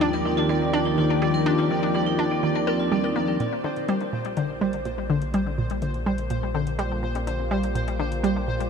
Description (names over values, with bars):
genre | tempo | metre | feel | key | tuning
ambient, sequencer-driven space music | 124 BPM | 4/4 | straight | Bb major | A4 = 440 Hz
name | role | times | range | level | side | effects
lush unison pad | sustained chords | 0.0-8.7 s | Eb2 to D5 | -26 LUFS | left 1 dB | chorus
vibraphone with hard mallets | arpeggios | 0.0-3.4 s | Bb3 to Bb4 | -28 LUFS | moving between left 3 dB and right 3 dB | auto-pan, ping-pong delay
analog pluck | riff | 0.0-8.6 s | Bb2 to Bb4 | -26 LUFS | equal | chorus, ping-pong delay
pulsing gated texture | texture | 0.0-8.7 s | C5 to D5 | -32 LUFS | equal | chorus, built-in reverb
analog drone | bass | 4.5-8.7 s | Bb1 | -30 LUFS | equal | chorus
electronic hi-hat and congas | percussion | 3.4-8.7 s | none | -47 LUFS | right 1 dB | ping-pong delay
room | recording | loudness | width
moderate huge ambient reverb, RT60 9.1 s | cassette tape | -22 LUFS | side -6 dB against mid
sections
0.0-3.4 A section; 3.4-8.7 B section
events
fade-in on analog synth pad 3.4-8.7; fade-in on drum 3.4-8.7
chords
0.0 Ebmaj7; 3.4 Bb6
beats
0.01 0.50 0.98 | 1.47 1.95 2.43 2.92 | 3.40 3.88 4.37 4.85 | 5.34 5.82 6.30 6.79 | 7.27 7.75 8.24